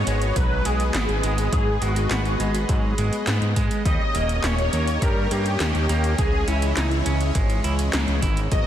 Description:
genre	synthwave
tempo	103 BPM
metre	4/4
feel	straight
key	G# minor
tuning	A4 = 441 Hz
part	wide unison lead	melody	0.0-8.7 s	E4 to D#5	-28 LUFS	left 1 dB	ensemble chorus, ping-pong delay
part	soft supersaw	sustained chords	0.0-8.7 s	E3 to D#5	-29 LUFS	left 1 dB	sidechain pumping
part	fat analog bass	bass	0.0-8.6 s	D#1 to G#2	-23 LUFS	equal	none
part	clean electric guitar	arpeggios	0.1-8.7 s	F#3 to E4	-31 LUFS	right 4 dB	spring reverb, digital delay
part	80s electronic pad drums	drums	0.1-8.6 s	handclaps, hi-hat, snare drum	-29 LUFS	equal	none
part	electronic kick drum	drums	0.4-8.6 s	none	-24 LUFS	equal	none
room	light reverb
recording	dense, heavily limited modern master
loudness	-20 LUFS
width	side -11 dB against mid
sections	0.0-8.7 A section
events	none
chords	0.0 G#m7; 3.9 D#7; 6.2 C#madd9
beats	0.36 0.94 | 1.52 2.11 2.69 3.27 | 3.85 4.44 5.02 5.60 | 6.18 6.77 7.35 7.93 | 8.52

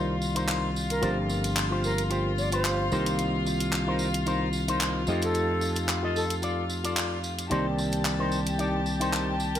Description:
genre	nu-disco, nu disco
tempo	111 BPM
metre	4/4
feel	swing 54% on 16ths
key	C dorian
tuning	A4 = 441 Hz
part	tine electric piano	accompaniment	0.0-9.6 s	Eb3 to D5	-32 LUFS	equal	low-pass filter, ping-pong delay
part	warm studio violin section	sustained chords	0.0-9.6 s	F4 to A5	-33 LUFS	left 3 dB	vintage 12-bit sampler grit
part	electric guitar with an envelope filter	riff	0.0-9.3 s	Eb4 to Eb5	-32 LUFS	left 2 dB	wide subtle chorus, low-pass filter, ping-pong delay
part	glassy slap bass	bass	0.0-9.6 s	G1 to F2	-30 LUFS	equal	none
part	tambourine	percussion	0.2-9.6 s	none	-40 LUFS	right 3 dB	none
part	house drum kit	drums	0.4-9.6 s	handclaps, hi-hat	-31 LUFS	equal	none
part	breathy bright concert flute	melody	0.9-9.6 s	A4 to D5	-32 LUFS	right 1 dB	digital delay
room	light reverb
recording	none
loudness	-25 LUFS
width	side -10 dB against mid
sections	0.0-9.6 A section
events	filter sweep on tine electric piano 0.0-9.6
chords	0.0 Cm7; 1.0 G7sus4; 2.9 Cm7; 5.1 F7; 7.5 Cm7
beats	0.49 | 1.03 1.57 2.11 2.65 | 3.19 3.73 4.27 4.81 | 5.35 5.89 6.43 6.97 | 7.51 8.05 8.59 9.13

